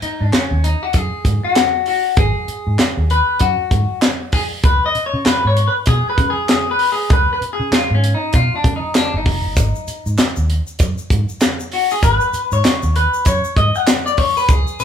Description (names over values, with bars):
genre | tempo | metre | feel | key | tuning
funk | 97 BPM | 4/4 | swing 60% on 16ths | G# dorian | A4 = 440 Hz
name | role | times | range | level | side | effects
clean electric guitar | accompaniment | 0.0-14.8 s | C#4 to F#5 | -18 LUFS | left 3 dB | phaser
vintage muted fingered electric bass | bass | 0.0-14.8 s | E#1 to C#3 | -18 LUFS | equal | none
tight funk drum kit | drums | 0.0-14.8 s | handclaps, hi-hat, kick drum, snare drum | -17 LUFS | equal | none
tube shaker | percussion | 9.6-14.8 s | none | -32 LUFS | left 4 dB | none
room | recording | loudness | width
moderate large studio reverb, RT60 0.8 s | band playing live in one room | -14 LUFS | side -8 dB against mid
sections
0.0-14.8 A section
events
clean electric guitar solo 0.0-14.8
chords
0.0 G#5; 4.6 C#7; 9.6 G#5